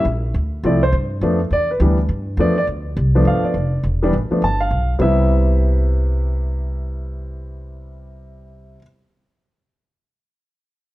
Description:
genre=jazz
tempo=206 BPM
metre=4/4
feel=swing 60% on 8ths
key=C major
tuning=A4 = 440 Hz
part: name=warm baby grand piano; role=melody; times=0.0-8.8 s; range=C3 to A5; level=-19 LUFS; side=equal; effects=none
part: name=upright bass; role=bass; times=0.0-8.7 s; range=E1 to G2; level=-19 LUFS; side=equal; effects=none
room=light reverb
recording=none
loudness=-16 LUFS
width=side -16 dB against mid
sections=0.3-5.0 A section; 5.0-7.3 B section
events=none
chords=0.3 Dm7; 0.9 G9; 1.5 Em7; 2.1 G9; 2.7 D7(no3); 3.3 G9; 3.8 E7(no3); 4.4 G7; 5.0 Cmaj7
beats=0.06 | 0.35 0.64 0.93 1.22 | 1.51 1.80 2.10 2.39 | 2.68 2.97 3.26 3.55 | 3.84 4.13 4.42 4.71 | 5.00 5.29 5.58 5.88 | 6.17 6.46 6.75 7.04

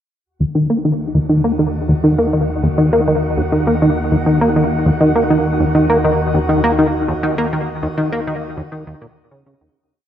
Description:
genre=ambient, sequencer-driven space music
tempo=101 BPM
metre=4/4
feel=straight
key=Eb minor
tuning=A4 = 441 Hz
part: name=analog drone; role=bass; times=1.1-9.7 s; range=Eb2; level=-22 LUFS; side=equal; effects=chorus
part: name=wind-like tuned noise texture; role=texture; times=1.2-9.8 s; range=Gb4 to Gb5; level=-26 LUFS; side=equal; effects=built-in reverb, shimmer reverb
part: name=plucky analog bass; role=riff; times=0.4-9.7 s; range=Eb2 to Bb3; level=-14 LUFS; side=equal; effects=analog chorus, analog delay, shimmer reverb
room=wet concert hall reverb, RT60 2.0 s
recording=none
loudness=-13 LUFS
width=side -10 dB against mid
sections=0.3-9.8 A section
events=fade-in on synth texture 0.3-9.8; fade-out 6.6-9.8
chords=0.3 Ebm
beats=| 0.25 0.85 1.44 2.04 | 2.63 3.22 3.82 4.41 | 5.01 5.60 6.19 6.79 | 7.38 7.98 8.57 9.16

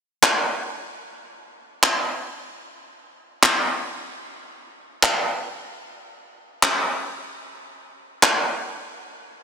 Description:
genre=hip hop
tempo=free time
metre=none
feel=none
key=none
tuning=none
part: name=handclaps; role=drums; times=0.2-8.3 s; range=none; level=-19 LUFS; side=equal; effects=none
room=light reverb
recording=dense, heavily limited modern master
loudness=-19 LUFS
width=side -7 dB against mid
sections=0.0-9.4 A section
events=none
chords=none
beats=free time

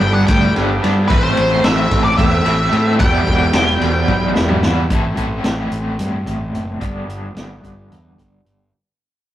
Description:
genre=psychedelic rock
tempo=220 BPM (eighths)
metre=7/8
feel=straight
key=A minor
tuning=A4 = 439 Hz
part: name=octave-fuzz lead guitar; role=melody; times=0.0-4.3 s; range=B4 to G5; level=-19 LUFS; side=equal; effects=distortion, analog delay
part: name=combo organ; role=sustained chords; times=0.0-4.9 s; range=C4 to B5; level=-26 LUFS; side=right 3 dB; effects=none
part: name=cranked stack guitar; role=riff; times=0.0-8.7 s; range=E2 to A4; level=-20 LUFS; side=equal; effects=overdrive, tremolo, low-pass filter
part: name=fuzz fingered electric bass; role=bass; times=0.0-8.7 s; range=E1 to A2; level=-19 LUFS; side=equal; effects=overdrive
part: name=vintage drum kit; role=drums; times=0.0-8.6 s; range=hi-hat, kick drum, ride cymbal, snare drum, toms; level=-19 LUFS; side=equal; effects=none
room=moderate stone room reverb, RT60 1.0 s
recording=rough rehearsal-room recording, tube saturation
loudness=-13 LUFS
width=side -13 dB against mid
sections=0.0-4.9 A section; 4.9-8.7 B section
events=drum fill 4.1-4.9; fade-out 4.9-8.7; filter sweep on overdriven electric guitar 4.9-8.7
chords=0.0 Gadd9; 1.1 Amadd9; 3.0 Em; 4.9 Am; 6.8 G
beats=0.01 0.28 0.55 0.82 | 1.09 1.36 1.63 1.91 2.17 2.45 2.72 | 2.99 3.26 3.53 3.80 4.07 4.34 4.62 | 4.89 5.16 5.43 5.71 5.98 6.26 6.53 | 6.80 7.08 7.36 7.63 7.91 8.18 8.46

